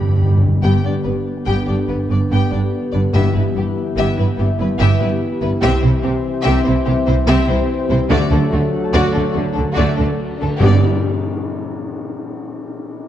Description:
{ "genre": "cinematic, heroic adventure film score", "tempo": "96 BPM (dotted quarters)", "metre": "12/8", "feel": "straight", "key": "G major", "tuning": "A4 = 437 Hz", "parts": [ { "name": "warm symphonic violin section", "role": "melody", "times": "0.0-10.9 s", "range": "F#4 to B5", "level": "-26 LUFS", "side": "left 6 dB", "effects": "none" }, { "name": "dark symphonic violin section", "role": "second line", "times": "0.0-10.8 s", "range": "A3 to G4", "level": "-26 LUFS", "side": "left 2 dB", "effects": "none" }, { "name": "warm symphonic viola section", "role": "accompaniment", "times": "0.0-10.8 s", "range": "G3 to C4", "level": "-25 LUFS", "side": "equal", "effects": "none" }, { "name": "concert harp", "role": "arpeggios", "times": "0.0-10.8 s", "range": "G2 to A5", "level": "-26 LUFS", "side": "left 6 dB", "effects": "none" }, { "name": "rich symphonic cello section", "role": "bass", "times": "0.0-10.9 s", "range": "G2 to D3", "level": "-21 LUFS", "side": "right 2 dB", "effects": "none" }, { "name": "warm symphonic double bass section", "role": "bass", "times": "0.0-10.8 s", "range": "G1 to D2", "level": "-19 LUFS", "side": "right 2 dB", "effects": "none" }, { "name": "timpani", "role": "percussion", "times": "0.0-3.7, 8.1-10.8 s", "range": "G2 to D3", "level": "-22 LUFS", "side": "left 1 dB", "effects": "none" }, { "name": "mellow trombone section", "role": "sustained chords", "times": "0.6-10.8 s", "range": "D3 to C4", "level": "-24 LUFS", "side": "right 1 dB", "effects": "none" }, { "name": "cymbal swell and tam-tam", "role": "percussion", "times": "8.1-12.2 s", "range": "none", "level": "-26 LUFS", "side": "left 3 dB", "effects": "none" } ], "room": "moderate scoring stage reverb, RT60 1.8 s", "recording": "dark, warm production", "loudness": "-14 LUFS", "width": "side -11 dB against mid", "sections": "0.6-10.6 A section; 10.6-13.1 B section", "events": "timpani fill 0.0-0.6; band accent 10.6-11.0", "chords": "0.0 G; 3.1 Em/G; 5.6 C; 8.1 D; 10.6 G", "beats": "0.00 | 0.63 1.26 1.89 2.51 | 3.14 3.76 4.38 5.01 | 5.63 6.25 6.87 7.49 | 8.11 8.73 9.35 9.98 | 10.61 11.23 11.86" }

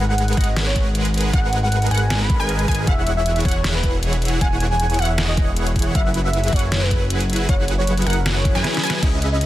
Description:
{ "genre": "future bass", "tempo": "156 BPM", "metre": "4/4", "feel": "half-time", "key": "unclear", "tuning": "A4 = 440 Hz", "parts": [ { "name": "wide unison pluck", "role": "arpeggios", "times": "0.0-9.5 s", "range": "E4 to G#5", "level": "-30 LUFS", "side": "right 1 dB", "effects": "sidechain pumping" }, { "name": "supersaw chords", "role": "riff", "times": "0.0-9.5 s", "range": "E3 to G#5", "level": "-25 LUFS", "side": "right 1 dB", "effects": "cassette tape, sidechain pumping" }, { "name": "fat analog bass", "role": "bass", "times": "0.0-9.5 s", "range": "E1 to F#2", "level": "-21 LUFS", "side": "equal", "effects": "sidechain pumping" }, { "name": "warm velvety synth lead", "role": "melody", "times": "0.1-9.5 s", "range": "A#4 to B5", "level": "-26 LUFS", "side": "equal", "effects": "chorus, sidechain pumping, dub echo" }, { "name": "pop drum kit", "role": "drums", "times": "0.2-9.5 s", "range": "crash cymbal, hi-hat, snare drum", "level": "-25 LUFS", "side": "equal", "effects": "overdrive" }, { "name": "electronic kick drum", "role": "drums", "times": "0.4-9.1 s", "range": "none", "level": "-20 LUFS", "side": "equal", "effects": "overdrive" }, { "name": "swell", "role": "sound effects", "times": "8.4-9.0 s", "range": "none", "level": "-34 LUFS", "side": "left 5 dB", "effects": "none" } ], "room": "digital ambience", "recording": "dense, heavily limited modern master", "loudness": "-17 LUFS", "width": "side -14 dB against mid", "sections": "0.0-9.5 A section", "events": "swell 8.4-9.0; drum fill 8.6-9.0", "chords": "0.0 G#m7; 2.9 E6; 6.0 F#7sus4", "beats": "0.18 0.57 0.95 | 1.33 1.72 2.10 2.49 | 2.87 3.26 3.64 4.03 | 4.41 4.80 5.18 5.57 | 5.95 6.33 6.72 7.10 | 7.49 7.87 8.26 8.64 | 9.03 9.41" }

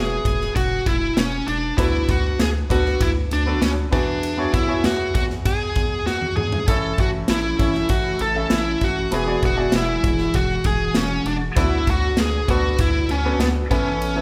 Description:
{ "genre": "piano-driven pop", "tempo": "98 BPM", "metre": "4/4", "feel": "straight", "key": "unclear", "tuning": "A4 = 443 Hz", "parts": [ { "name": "bluesy overdriven lead guitar", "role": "melody", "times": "0.0-14.2 s", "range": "B3 to A4", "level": "-25 LUFS", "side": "equal", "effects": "distortion" }, { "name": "bright upright piano", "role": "accompaniment", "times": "0.0-14.2 s", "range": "A2 to E5", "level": "-30 LUFS", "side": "equal", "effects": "none" }, { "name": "round analog bass", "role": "bass", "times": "0.0-14.2 s", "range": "E1 to E2", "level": "-28 LUFS", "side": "equal", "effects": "none" }, { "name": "modern studio drum kit", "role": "drums", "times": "0.3-14.2 s", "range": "crash cymbal, hi-hat, kick drum, ride cymbal, snare drum, toms", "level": "-25 LUFS", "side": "equal", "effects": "none" }, { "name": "warm studio string section", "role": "sustained chords", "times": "6.7-14.2 s", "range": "C#3 to A4", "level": "-34 LUFS", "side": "equal", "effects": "none" } ], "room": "wet large studio reverb, RT60 1.2 s", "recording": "band playing live in one room", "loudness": "-20 LUFS", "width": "mono", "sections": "0.0-14.2 A section", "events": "drum fill 6.1-6.7", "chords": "0.0 Eadd9; 1.8 D6; 3.9 Eadd9; 6.7 A; 9.1 Eadd9; 11.6 D6; 13.7 Aadd9", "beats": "0.56 1.17 | 1.78 2.39 3.01 3.62 | 4.23 4.84 5.46 6.07 | 6.68 7.29 7.90 8.51 | 9.12 9.73 10.35 10.96 | 11.57 12.18 12.79 13.40 | 14.01" }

